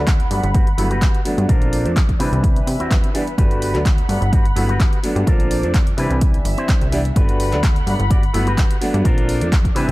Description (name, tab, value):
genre	filtered disco house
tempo	127 BPM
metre	4/4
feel	swing 53% on 16ths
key	G major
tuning	A4 = 440 Hz
part	bright concert grand piano	accompaniment	0.0-9.9 s	E3 to B4	-24 LUFS	equal	phaser, sidechain pumping, low-pass filter
part	muted studio violin section	sustained chords	0.0-9.9 s	B4 to B5	-29 LUFS	equal	sidechain pumping, low-pass filter
part	plucky analog bass	bass	0.0-9.9 s	G1 to C3	-21 LUFS	equal	sidechain pumping, low-pass filter
part	electronic kick drum	drums	0.1-9.7 s	none	-17 LUFS	equal	studio reverb
part	punchy analog drum machine	drums	0.1-9.9 s	handclaps, hi-hat	-29 LUFS	equal	sidechain pumping on hats, studio reverb
part	tambourine	percussion	0.1-9.9 s	none	-52 LUFS	right 1 dB	none
part	electric guitar with an envelope filter	riff	0.4-9.9 s	C4 to D5	-27 LUFS	left 1 dB	sidechain pumping, low-pass filter
room	little or no reverb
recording	dark, warm production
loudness	-15 LUFS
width	side -19 dB against mid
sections	0.0-9.9 A section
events	filter sweep 0.0-9.9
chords	0.0 Gmaj7; 1.5 Bbmaj7; 2.2 Cmaj7; 3.4 Gmaj7; 5.3 Bbmaj7; 6.0 Cmaj7; 7.2 Gmaj7; 9.1 Bbmaj7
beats	0.07 0.55 1.02 | 1.49 1.96 2.44 2.91 | 3.38 3.85 4.33 4.80 | 5.27 5.74 6.21 6.69 | 7.16 7.63 8.11 8.58 | 9.05 9.52